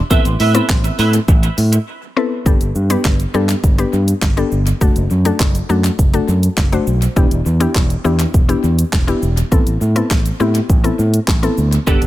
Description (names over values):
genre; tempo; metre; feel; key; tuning
dance-pop; 102 BPM; 4/4; straight; A dorian; A4 = 438 Hz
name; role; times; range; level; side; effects
marimba with medium mallets; melody; 0.0-1.8 s; C6; -36 LUFS; equal; none
mallet-like synth pluck; accompaniment; 0.1-12.1 s; A3 to C5; -19 LUFS; left 3 dB; chorus, sidechain pumping
twelve-string electric guitar; riff; 0.1-1.8, 11.9-12.1 s; B3 to E5; -21 LUFS; right 6 dB; ensemble chorus, analog delay
fingered electric bass; bass; 0.1-12.1 s; E1 to A2; -16 LUFS; equal; sidechain pumping
pop drum kit; drums; 0.1-12.1 s; handclaps, hi-hat, kick drum, shaker, snare drum; -16 LUFS; equal; analog delay
room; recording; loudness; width
digital ambience; echo-heavy mix; -12 LUFS; side -15 dB against mid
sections
0.0-2.5 A section; 2.5-12.1 B section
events
break 1.9-2.5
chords
0.1 Amadd9; 2.5 Gadd9; 4.8 D/F#; 7.2 Em7; 9.5 Amadd9